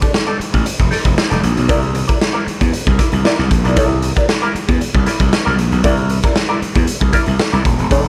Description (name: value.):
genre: funk.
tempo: 116 BPM.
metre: 4/4.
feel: straight.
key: C mixolydian.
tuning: A4 = 440 Hz.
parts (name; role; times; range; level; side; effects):
hollow-body jazz guitar; accompaniment; 0.0-8.1 s; Eb4 to D5; -22 LUFS; equal; wah.
raw garage drum kit; drums; 0.0-8.1 s; hi-hat, kick drum, snare drum; -18 LUFS; equal; none.
gritty slap bass; bass; 0.4-8.1 s; Eb1 to E2; -19 LUFS; equal; overdrive.
room: light reverb.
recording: none.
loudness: -15 LUFS.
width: mono.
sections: 0.0-8.1 A section.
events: none.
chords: 0.0 F6; 1.7 C9.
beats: 0.14 0.66 1.18 | 1.70 2.21 2.73 3.25 | 3.77 4.29 4.80 5.32 | 5.84 6.36 6.88 7.39 | 7.91.